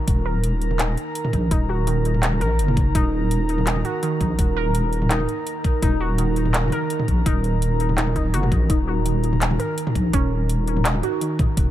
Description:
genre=half-time drum and bass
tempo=167 BPM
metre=4/4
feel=half-time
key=Eb minor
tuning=A4 = 440 Hz
part: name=dark analog pad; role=sustained chords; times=0.0-11.7 s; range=Eb3 to Bb5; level=-27 LUFS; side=right 1 dB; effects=chorus, phaser, sidechain pumping
part: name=deep soft wobble bass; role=bass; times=0.1-11.7 s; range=Eb1 to Bb1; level=-21 LUFS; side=equal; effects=chorus, tube saturation
part: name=drum and bass drum kit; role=drums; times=0.1-11.6 s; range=handclaps, hi-hat, toms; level=-26 LUFS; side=equal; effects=none
part: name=electronic kick drum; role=drums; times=0.1-11.6 s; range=none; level=-21 LUFS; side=equal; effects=none
part: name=warbly dusty pluck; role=arpeggios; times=0.3-11.4 s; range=Eb3 to Bb4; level=-28 LUFS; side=equal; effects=chorus, ping-pong delay
room=little or no reverb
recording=none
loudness=-19 LUFS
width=side -12 dB against mid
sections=0.0-11.7 A section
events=none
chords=0.0 Eb5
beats=| 0.07 0.43 0.79 1.15 | 1.51 1.87 2.23 2.59 | 2.95 3.31 3.67 4.03 | 4.39 4.75 5.11 5.46 | 5.82 6.18 6.54 6.90 | 7.26 7.62 7.98 8.34 | 8.70 9.06 9.42 9.78 | 10.13 10.49 10.85 11.21 | 11.57

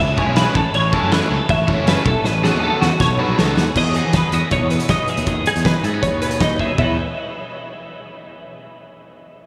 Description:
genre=math rock and midwest emo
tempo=159 BPM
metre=4/4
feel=straight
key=E major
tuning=A4 = 440 Hz
part: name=twelve-string electric guitar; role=arpeggios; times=0.0-7.0 s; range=E4 to E5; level=-23 LUFS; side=equal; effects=ensemble chorus, diffuse ambient delay
part: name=fuzz fingered electric bass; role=bass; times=0.0-7.0 s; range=F#1 to E3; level=-23 LUFS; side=equal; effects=overdrive
part: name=raw garage guitar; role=riff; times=0.2-3.6 s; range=F#3 to A4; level=-27 LUFS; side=equal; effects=overdrive, subtle chorus
part: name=loose indie drum kit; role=drums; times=0.2-6.9 s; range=crash cymbal, hi-hat, kick drum, snare drum, toms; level=-23 LUFS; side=equal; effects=none
part: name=twelve-string electric guitar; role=accompaniment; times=3.8-7.0 s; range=E2 to G#4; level=-30 LUFS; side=equal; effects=subtle chorus
room=wet huge ambient reverb, RT60 7.9 s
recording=dreamy mix soaked in reverb, small room reverb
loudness=-18 LUFS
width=mono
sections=0.0-3.8 A section; 3.8-6.8 B section; 6.8-8.3 C section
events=drum fill 2.2-3.8, 6.6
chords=0.0 C#m7; 0.6 A6; 2.1 B7(no3); 3.8 Emaj7; 6.8 E5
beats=0.37 | 0.74 1.12 1.50 1.87 | 2.25 2.63 3.00 3.38 | 3.76 4.13 4.51 4.89 | 5.27 5.65 6.03 6.41 | 6.78

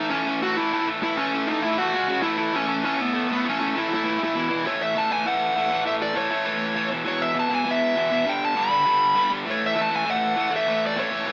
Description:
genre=punk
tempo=199 BPM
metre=4/4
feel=straight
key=A major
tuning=A4 = 440 Hz
part: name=dark smooth lead guitar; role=melody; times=0.0-11.3 s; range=B3 to B5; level=-26 LUFS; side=equal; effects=overdrive
part: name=crunchy overdriven guitar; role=riff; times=0.0-11.3 s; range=E2 to C#4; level=-27 LUFS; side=equal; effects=none
room=moderate studio reverb, RT60 0.7 s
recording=band playing live in one room, small speaker sound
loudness=-23 LUFS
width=mono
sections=0.0-4.7 A section; 4.7-11.3 B section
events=none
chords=0.0 A5; 1.9 C#5; 2.2 A; 4.3 E5; 4.7 A; 6.9 E5; 8.3 G; 9.5 A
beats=0.12 0.42 0.72 | 1.02 1.32 1.63 1.93 | 2.23 2.54 2.84 3.14 | 3.44 3.74 4.05 4.35 | 4.65 4.95 5.25 5.55 | 5.86 6.16 6.46 6.76 | 7.06 7.36 7.67 7.97 | 8.27 8.57 8.87 9.17 | 9.47 9.77 10.07 10.38 | 10.68 10.98 11.28

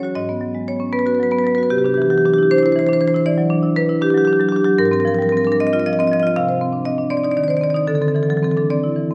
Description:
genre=classical, contemporary piece for solo marimba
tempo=78 BPM (dotted quarters)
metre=6/8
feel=uneven beats, rubato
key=unclear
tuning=A4 = 440 Hz
part: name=marimba with medium hard mallets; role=solo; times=0.0-9.1 s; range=G#2 to E#5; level=-18 LUFS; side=equal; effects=none
room=wet recital hall reverb, RT60 1.4 s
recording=heard from further back in the room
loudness=-17 LUFS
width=mono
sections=0.0-9.1 A section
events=none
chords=0.2 G#m7; 1.7 Cadd9; 3.3 Em9; 4.8 G#69; 6.3 Cmadd9; 7.9 D7sus2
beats=| 0.16 0.93 | 1.69 2.51 | 3.26 4.01 | 4.78 5.59 | 6.35 7.10 | 7.88 8.69

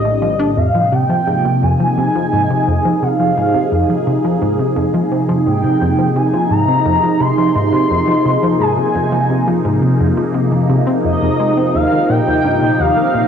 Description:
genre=ambient, sequencer-driven space music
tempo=86 BPM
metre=4/4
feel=straight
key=F minor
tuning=A4 = 440 Hz
part: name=expressive synth lead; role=melody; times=0.0-13.3 s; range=Eb5 to C6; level=-18 LUFS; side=equal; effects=ensemble chorus, plate reverb, analog delay
part: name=phased analog pad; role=sustained chords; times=0.0-13.3 s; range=A2 to Ab4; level=-15 LUFS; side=equal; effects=phaser, chorus, cassette tape, plate reverb
part: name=fat analog bass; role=bass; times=0.0-0.5 s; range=Bb1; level=-35 LUFS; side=equal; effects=none
part: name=tight sequenced synth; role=riff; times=0.1-13.3 s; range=Eb2 to D4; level=-18 LUFS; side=equal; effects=chorus, cassette tape, analog delay
room=wet studio reverb, RT60 0.5 s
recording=home recording on cassette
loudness=-12 LUFS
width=side -8 dB against mid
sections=0.6-13.3 A section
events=none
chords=0.0 Bb; 0.6 Fm; 11.7 Eb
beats=| 0.58 1.28 1.97 2.67 | 3.37 4.07 4.76 5.46 | 6.16 6.86 7.55 8.25 | 8.95 9.65 10.35 11.04 | 11.74 12.44 13.14

